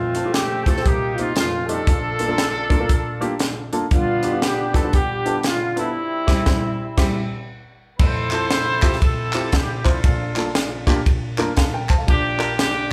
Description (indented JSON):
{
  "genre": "uptempo gospel",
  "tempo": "118 BPM",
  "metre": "4/4",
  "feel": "swing 64% on 8ths",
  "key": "F major",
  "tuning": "A4 = 441 Hz",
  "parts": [
    { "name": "clear horn section", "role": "melody", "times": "0.0-12.9 s", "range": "G3 to C5", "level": "-27 LUFS", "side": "equal", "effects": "none" },
    { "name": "mellow alto saxophone", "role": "melody", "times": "0.0-7.5 s", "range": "E4 to A4", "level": "-28 LUFS", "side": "equal", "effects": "none" },
    { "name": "warm baby grand piano", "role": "accompaniment", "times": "0.0-12.9 s", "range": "F1 to A5", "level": "-28 LUFS", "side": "equal", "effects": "none" },
    { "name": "crisp fusion drum kit", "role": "drums", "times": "0.1-12.7 s", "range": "crash cymbal, hi-hat, kick drum, ride cymbal, snare drum", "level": "-22 LUFS", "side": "equal", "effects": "none" },
    { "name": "group handclap", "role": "percussion", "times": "8.3-12.5 s", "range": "none", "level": "-32 LUFS", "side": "equal", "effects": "none" }
  ],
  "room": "moderate large studio reverb, RT60 1.0 s",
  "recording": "band playing live in one room",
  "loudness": "-20 LUFS",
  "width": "mono",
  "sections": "0.0-8.0 A section; 8.0-12.9 B section",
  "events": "band accent 6.0-8.0",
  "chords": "0.0 F; 0.9 Cm7; 1.4 F9; 1.9 Bb; 3.9 G7; 6.0 C; 8.0 Fmaj7; 10.0 Bbmaj7"
}